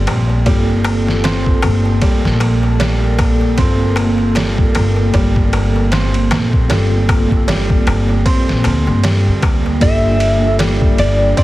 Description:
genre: trip hop.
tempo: 77 BPM.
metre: 4/4.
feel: swing 57% on 16ths.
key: G minor.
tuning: A4 = 439 Hz.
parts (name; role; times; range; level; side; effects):
mellow tine electric piano; accompaniment; 0.0-11.4 s; Bb3 to A4; -21 LUFS; equal; medium stereo tremolo, harmonic tremolo, vintage 12-bit sampler grit, tape echo.
dark analog pad; sustained chords; 0.0-11.4 s; Bb3 to D5; -22 LUFS; right 1 dB; chorus, vintage 12-bit sampler grit.
felt-muted upright piano; arpeggios; 0.0-11.4 s; G3 to C4; -23 LUFS; right 2 dB; dub echo.
upright bass; bass; 0.0-11.4 s; G1 to G2; -16 LUFS; equal; none.
trip hop sampler-style drum kit; drums; 0.1-11.4 s; kick drum, ride cymbal, snare drum; -17 LUFS; equal; overdrive.
darbuka; percussion; 0.1-9.8 s; none; -25 LUFS; left 3 dB; none.
electric slide guitar; melody; 9.8-11.4 s; D5 to E5; -17 LUFS; equal; dub echo.
room: light reverb.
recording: heavily compressed radio sound, multiband compression, vinyl crackle.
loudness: -12 LUFS.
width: side -16 dB against mid.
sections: 0.0-9.8 A section; 9.8-11.4 B section.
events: none.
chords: 0.0 Gm11.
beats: | 0.46 1.24 2.02 2.80 | 3.58 4.36 5.14 5.92 | 6.70 7.47 8.26 9.03 | 9.81 10.59 11.37.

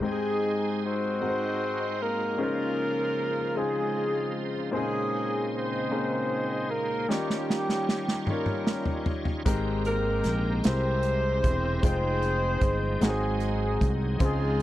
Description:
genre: slow gospel.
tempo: 51 BPM (dotted quarters).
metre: 6/8.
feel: straight.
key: Ab major.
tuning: A4 = 439 Hz.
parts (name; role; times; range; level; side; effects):
clear concert grand piano; accompaniment; 0.0-14.6 s; Ab2 to G5; -31 LUFS; left 3 dB; none.
bright tonewheel organ; sustained chords; 0.0-14.6 s; Bb2 to G5; -36 LUFS; right 4 dB; slow rotary speaker, overdrive, chorus vibrato.
mellow horn section; melody; 0.1-14.6 s; G3 to C5; -29 LUFS; equal; none.
natural country drum kit; drums; 7.1-14.6 s; hi-hat, kick drum, snare drum, toms; -27 LUFS; right 1 dB; none.
fingered electric bass; bass; 9.5-14.6 s; E1 to Db2; -28 LUFS; right 1 dB; none.
room: small room ambience.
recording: dry, close 1970s-style studio recording.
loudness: -25 LUFS.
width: side -14 dB against mid.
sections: 0.0-14.6 A section.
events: drum fill 7.1-9.5.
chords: 0.0 Abmaj7; 1.2 Ab7; 2.4 Dbmaj9; 4.7 Bbm11; 7.1 Eb9; 9.5 Abmaj9; 10.6 C7b13; 11.8 Fm9; 13.0 Ab7.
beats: | 0.03 1.21 | 2.38 3.56 | 4.74 5.92 | 7.10 8.28 | 9.46 10.65 | 11.83 13.02 | 14.20.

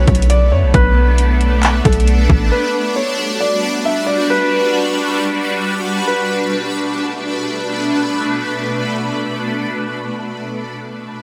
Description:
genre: hip hop, atmospheric cloud-rap.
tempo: 135 BPM.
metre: 4/4.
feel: half-time.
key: B minor.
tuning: A4 = 437 Hz.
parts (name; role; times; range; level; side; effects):
felt-muted upright piano; melody; 0.0-7.4 s; A4 to E5; -22 LUFS; equal; low-pass filter, digital delay.
shimmering ambient pad; sustained chords; 0.0-10.4 s; B2 to B4; -20 LUFS; equal; chorus, built-in reverb, phaser, sidechain pumping.
warm 808-style bass; bass; 0.0-2.5 s; A1 to F#2; -15 LUFS; equal; none.
trap drum kit; drums; 0.1-2.4 s; handclaps, hi-hat, kick drum; -18 LUFS; equal; none.
room: light reverb, digital ambience.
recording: none.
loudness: -16 LUFS.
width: mono.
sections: 0.0-6.1 A section; 6.1-9.6 B section.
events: none.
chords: 0.0 Bm7; 2.5 Gmaj7; 6.1 Bm7.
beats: 0.30 | 0.74 1.19 1.63 2.07 | 2.52 2.96 3.41 3.85 | 4.30 4.74 5.18 5.63 | 6.07 6.52 6.96 7.41 | 7.85 8.30 8.74 9.19.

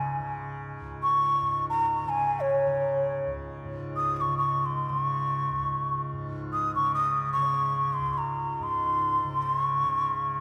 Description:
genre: indian classical, Hindustani.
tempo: free time.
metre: none.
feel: none.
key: Db raga bilaval.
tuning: A4 = 438 Hz.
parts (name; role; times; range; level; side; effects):
breathy bansuri; melody; 0.0-10.4 s; Db5 to Eb6; -28 LUFS; equal; none.
tanpura; drone; 0.0-10.4 s; Db2 to Db3; -37 LUFS; equal; none.
room: wet church reverb, RT60 3.6 s.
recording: recorded in a church or concert hall.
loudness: -27 LUFS.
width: mono.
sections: 0.0-3.6 A section; 3.6-10.4 A section.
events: none.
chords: none.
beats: free time.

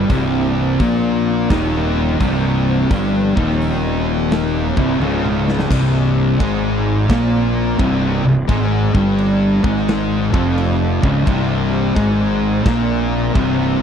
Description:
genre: stoner and doom metal.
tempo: 86 BPM.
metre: 4/4.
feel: swing 66% on 8ths.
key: C minor.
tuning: A4 = 441 Hz.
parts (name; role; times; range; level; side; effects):
soft string machine; sustained chords; 0.0-13.8 s; F3 to D5; -30 LUFS; right 1 dB; none.
distorted electric guitar; riff; 0.0-13.8 s; C2 to Bb3; -24 LUFS; right 1 dB; distortion.
thick fuzz guitar; riff; 0.0-13.8 s; C2 to Bb3; -19 LUFS; left 9 dB; distortion.
thick fuzz guitar; riff; 0.0-13.8 s; C2 to Bb3; -20 LUFS; right 7 dB; distortion.
fuzz fingered electric bass; bass; 0.0-13.8 s; C1 to Bb1; -21 LUFS; equal; overdrive, tube saturation.
big rock drum kit; drums; 0.1-13.6 s; crash cymbal, hi-hat, kick drum, snare drum, toms; -20 LUFS; equal; none.
room: little or no reverb.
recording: dry, close 1970s-style studio recording.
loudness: -14 LUFS.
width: side -8 dB against mid.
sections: 0.0-5.7 A section; 5.7-13.8 B section.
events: drum fill 5.0-5.7.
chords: 0.0 Cm; 5.7 C5.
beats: | 0.10 0.80 1.50 2.20 | 2.90 3.60 4.30 5.00 | 5.70 6.39 7.09 7.79 | 8.49 9.18 9.88 10.58 | 11.27 11.97 12.66 13.36.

